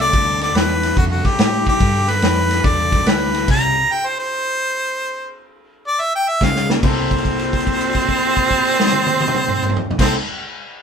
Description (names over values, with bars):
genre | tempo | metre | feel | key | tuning
electric blues shuffle | 143 BPM | 4/4 | swing 67% on 8ths | C mixolydian | A4 = 440 Hz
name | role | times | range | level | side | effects
bright harmonica | melody | 0.0-10.1 s | F#4 to Bb5 | -19 LUFS | equal | overdrive
electric guitar through a small old amp | riff | 0.0-3.7, 6.4-10.2 s | G2 to A4 | -24 LUFS | left 3 dB | none
vintage muted fingered electric bass | bass | 0.0-3.8, 6.4-10.1 s | C2 to A2 | -23 LUFS | equal | none
vintage drum kit | drums | 0.0-3.6, 6.4-10.1 s | crash cymbal, kick drum, ride cymbal, snare drum, toms | -19 LUFS | equal | none
growling tenor saxophone | second line | 6.9-10.2 s | C4 | -21 LUFS | right 5 dB | none
room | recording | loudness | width
moderate studio reverb, RT60 0.8 s | band playing live in one room | -15 LUFS | side -7 dB against mid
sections
0.0-6.8 A section; 6.8-10.2 B section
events
stop 3.5-6.4; drum fill 6.4-6.8; held note 6.8-9.9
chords
0.1 G7; 3.5 C5; 6.4 Db; 6.8 C6